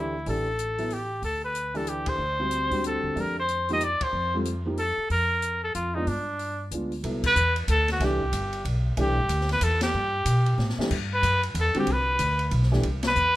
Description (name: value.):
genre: modal jazz.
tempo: 186 BPM.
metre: 3/4.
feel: swing 62% on 8ths.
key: C lydian from 7.0 s.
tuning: A4 = 440 Hz.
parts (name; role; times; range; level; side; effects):
warm trumpet; melody; 0.0-13.4 s; D4 to Eb5; -25 LUFS; equal; none.
warm grand piano; accompaniment; 0.0-12.8 s; D3 to C5; -30 LUFS; equal; none.
upright bass; bass; 0.0-13.4 s; G1 to B2; -27 LUFS; equal; none.
open jazz drum kit; drums; 0.3-13.3 s; crash cymbal, hi-hat, kick drum, ride cymbal, snare drum; -34 LUFS; left 1 dB; none.
room: light reverb.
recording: minimal, uncompressed stereo recording.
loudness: -23 LUFS.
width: side -16 dB against mid.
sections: 0.0-7.0 A section; 7.0-13.4 B section.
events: band accent 2.0, 4.0, 7.2, 9.8, 13.0; drum fill 10.6-10.9.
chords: 0.0 D9sus4; 3.2 Fsus4; 6.1 G7b9; 7.0 Cmaj9.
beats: | 0.27 0.59 0.91 | 1.24 1.56 1.88 | 2.20 2.52 2.85 | 3.17 3.49 3.81 | 4.14 4.46 4.78 | 5.11 5.43 5.75 | 6.07 6.40 6.72 | 7.04 7.36 7.69 | 8.01 8.33 8.65 | 8.97 9.30 9.62 | 9.94 10.26 10.59 | 10.91 11.23 11.55 | 11.88 12.20 12.52 | 12.84 13.16.